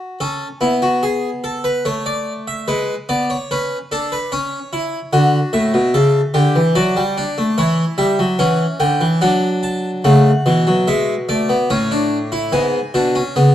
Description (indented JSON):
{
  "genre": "classical, baroque-style 3-part fugue for harpsichord",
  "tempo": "73 BPM",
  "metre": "3/4",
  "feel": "straight",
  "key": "D major",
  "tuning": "A4 = 440 Hz",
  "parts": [
    { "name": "harpsichord", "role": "solo", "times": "0.0-13.5 s", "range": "G#2 to A5", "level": "-15 LUFS", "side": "equal", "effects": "none" }
  ],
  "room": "moderate stone room reverb, RT60 1.1 s",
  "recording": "dark, warm production, vinyl crackle",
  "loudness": "-15 LUFS",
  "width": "side -11 dB against mid",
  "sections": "0.0-13.5 A section",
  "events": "none",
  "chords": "0.2 A; 2.7 G#dim; 4.3 C#m; 5.1 D; 6.8 D/F#; 7.6 C#dim/E; 9.2 D/F#; 10.0 A; 12.5 G#dim",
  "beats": "| 0.20 1.03 1.85 | 2.68 3.51 4.33 | 5.13 5.94 6.75 | 7.57 8.39 9.21 | 10.04 10.87 11.69 | 12.52 13.35"
}